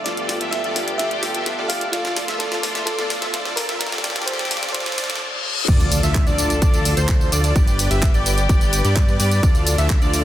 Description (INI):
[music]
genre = EDM, festival progressive house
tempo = 128 BPM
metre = 4/4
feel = straight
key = D minor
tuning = A4 = 440 Hz
[part]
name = bell-like FM electric piano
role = melody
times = 0.0-5.2 s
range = F4 to F5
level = -28 LUFS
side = right 1 dB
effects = chorus, dub echo
[part]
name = dark chamber string section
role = sustained chords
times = 0.0-10.2 s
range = D2 to A4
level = -29 LUFS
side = left 2 dB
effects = sidechain pumping
[part]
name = riser, reverse cymbal and impact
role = sound effects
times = 3.0-7.6 s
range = none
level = -29 LUFS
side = left 1 dB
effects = none
[part]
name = dense compressed supersaw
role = riff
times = 0.1-10.2 s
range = F4 to E5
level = -26 LUFS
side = equal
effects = sidechain pumping, dub echo
[part]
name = pop drum kit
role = drums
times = 0.1-10.2 s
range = crash cymbal, handclaps, hi-hat, snare drum, tambourine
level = -25 LUFS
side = equal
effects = high-pass filter on snare, high-pass filter on hats, high-pass filter on cymbals, high-pass filter on perc
[part]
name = wide unison lead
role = arpeggios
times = 5.7-10.2 s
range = C5 to E5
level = -26 LUFS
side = equal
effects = sidechain pumping, dub echo
[part]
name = fat analog bass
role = bass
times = 5.7-10.2 s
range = G1 to G2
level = -20 LUFS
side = equal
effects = sidechain pumping
[part]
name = electronic kick drum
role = drums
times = 5.7-10.0 s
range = none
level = -17 LUFS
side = equal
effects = none
[sound]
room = light reverb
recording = dense, heavily limited modern master, high-pass filter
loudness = -17 LUFS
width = side -13 dB against mid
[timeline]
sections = 0.0-5.7 A section; 5.7-10.2 B section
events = build-up 0.0-5.7; drum fill 0.0-5.2; reverse cymbal 4.8-5.7; drop 5.7-10.2; impact 5.7-7.6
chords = 0.1 G; 1.9 Dm; 3.8 Gm; 5.7 Dm; 7.6 G; 9.4 Dm